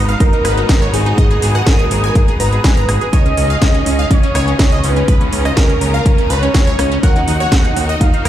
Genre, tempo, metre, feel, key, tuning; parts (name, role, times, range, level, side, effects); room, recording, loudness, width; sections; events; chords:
progressive house; 123 BPM; 4/4; straight; A4 = 440 Hz
wide unison lead; melody; 0.0-8.3 s; Ab4 to Gb5; -20 LUFS; equal; wide subtle chorus, sidechain pumping, ping-pong delay
clear studio string section; sustained chords; 0.0-8.3 s; Db3 to Bb5; -24 LUFS; left 1 dB; sidechain pumping
wide unison pluck; arpeggios; 0.0-8.3 s; Db4 to Bb5; -21 LUFS; right 2 dB; phaser, sidechain pumping, digital delay
fat analog bass; bass; 0.0-8.3 s; Ab1 to Ab2; -17 LUFS; equal; tube saturation, sidechain pumping
backwards swelling texture; texture; 0.0-8.3 s; D#6; -29 LUFS; right 2 dB; built-in reverb, sidechain pumping
house drum kit; drums; 0.1-8.3 s; hi-hat, rim click, snare drum; -21 LUFS; equal
electronic kick drum; drums; 0.2-8.1 s; -13 LUFS; equal
digital ambience; played on a big sound system in a bare room, large studio reverb; -11 LUFS; side -12 dB against mid
0.0-8.3 A section
0.0 Abm7; 3.1 Dbadd9; 7.0 Ebm